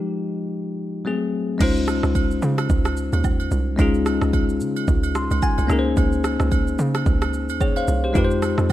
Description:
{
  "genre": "amapiano",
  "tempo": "110 BPM",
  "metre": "4/4",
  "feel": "swing 58% on 16ths",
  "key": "unclear",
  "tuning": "A4 = 440 Hz",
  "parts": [
    { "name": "bell-like tine electric piano", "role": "accompaniment", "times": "0.0-8.7 s", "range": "F3 to C6", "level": "-22 LUFS", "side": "left 3 dB", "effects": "low-pass filter" },
    { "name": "hollow log drum bass", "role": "bass", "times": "1.6-8.7 s", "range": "C2 to Db3", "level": "-22 LUFS", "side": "right 1 dB", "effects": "none" },
    { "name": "deep house drum kit", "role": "drums", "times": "1.6-8.7 s", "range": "crash cymbal, kick drum, rim click, shaker", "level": "-23 LUFS", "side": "right 1 dB", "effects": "vintage 12-bit sampler grit" },
    { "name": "agogo bells and woodblock", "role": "percussion", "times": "1.6-8.7 s", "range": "none", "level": "-32 LUFS", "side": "right 12 dB", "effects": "none" }
  ],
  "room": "little or no reverb",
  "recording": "none",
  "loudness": "-18 LUFS",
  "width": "side -13 dB against mid",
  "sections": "0.0-1.6 A section; 1.6-8.7 B section",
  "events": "break 0.0-1.6; filter sweep on tine electric piano 0.0-1.6; drop 1.6-8.7; tine electric piano fill 4.9-6.0",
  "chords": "0.0 Fm9; 1.1 Ab7b9; 1.6 Dbmaj9; 5.7 Bbm11/Db; 8.2 Fm9"
}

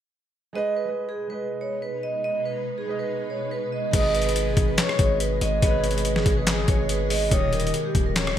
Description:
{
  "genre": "hip hop, trap",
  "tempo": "142 BPM",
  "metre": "4/4",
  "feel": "half-time",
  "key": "G# minor",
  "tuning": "A4 = 440 Hz",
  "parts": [
    { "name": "dark concert grand piano", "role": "accompaniment", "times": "0.5-8.4 s", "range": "D#3 to D#5", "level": "-30 LUFS", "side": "right 7 dB", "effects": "none" },
    { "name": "vibraphone with medium hard mallets", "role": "melody", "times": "0.6-8.1 s", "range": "G4 to D#5", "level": "-27 LUFS", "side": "right 1 dB", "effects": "digital delay" },
    { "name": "granular cloud pad", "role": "sustained chords", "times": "1.4-8.4 s", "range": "B2 to D#5", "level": "-33 LUFS", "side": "equal", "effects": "built-in reverb" },
    { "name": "breathy flute-like synth lead", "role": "second line", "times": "3.9-8.4 s", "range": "G#4 to D#5", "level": "-31 LUFS", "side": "left 5 dB", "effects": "chorus, digital delay" },
    { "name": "hard-hitting 808-style bass", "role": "bass", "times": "3.9-8.4 s", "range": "D#1 to G#1", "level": "-27 LUFS", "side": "left 1 dB", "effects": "none" },
    { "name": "boom bap sampler-style drum kit", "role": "drums", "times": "3.9-8.4 s", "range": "crash cymbal, handclaps, hi-hat, kick drum, rim click, snare drum", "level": "-23 LUFS", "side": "left 1 dB", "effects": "overdrive, gated reverb" }
  ],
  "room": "light reverb, digital ambience",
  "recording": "bright 1980s-style digital production",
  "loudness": "-21 LUFS",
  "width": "side -10 dB against mid",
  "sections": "0.6-3.9 A section; 3.9-8.4 B section",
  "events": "none",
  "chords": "0.6 G#m; 7.3 D#7"
}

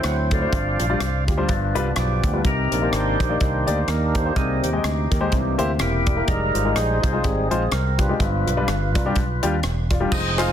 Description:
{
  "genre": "uptempo gospel",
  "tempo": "125 BPM",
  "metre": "4/4",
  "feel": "swing 57% on 8ths",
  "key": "unclear",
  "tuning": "A4 = 440 Hz",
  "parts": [
    { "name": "percussive tonewheel organ", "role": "sustained chords", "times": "0.0-10.5 s", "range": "Eb3 to F#5", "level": "-24 LUFS", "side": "right 1 dB", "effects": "slow rotary speaker, overdrive" },
    { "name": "fingered electric bass", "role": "bass", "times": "0.0-10.5 s", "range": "E1 to Eb2", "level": "-24 LUFS", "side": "equal", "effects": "none" },
    { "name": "crisp fusion drum kit", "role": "drums", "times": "0.0-10.5 s", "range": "crash cymbal, hi-hat, kick drum, rim click", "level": "-25 LUFS", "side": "equal", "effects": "soft clipping on snare" },
    { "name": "warm concert grand piano", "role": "accompaniment", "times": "0.3-10.5 s", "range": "G2 to F5", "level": "-25 LUFS", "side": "left 3 dB", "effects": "none" },
    { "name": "tambourine and handclaps", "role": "percussion", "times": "10.1-10.5 s", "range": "none", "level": "-33 LUFS", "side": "equal", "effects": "none" }
  ],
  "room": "light reverb, small room ambience",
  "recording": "dense, heavily limited modern master",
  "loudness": "-19 LUFS",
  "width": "side -10 dB against mid",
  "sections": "0.0-10.1 A section",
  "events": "tonewheel organ solo 0.0-10.1",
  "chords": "0.0 D7; 0.5 G7sus4; 1.5 G7; 2.4 Cm7; 4.4 Abmaj7/C; 5.3 C7; 6.3 Fm7; 8.2 G7"
}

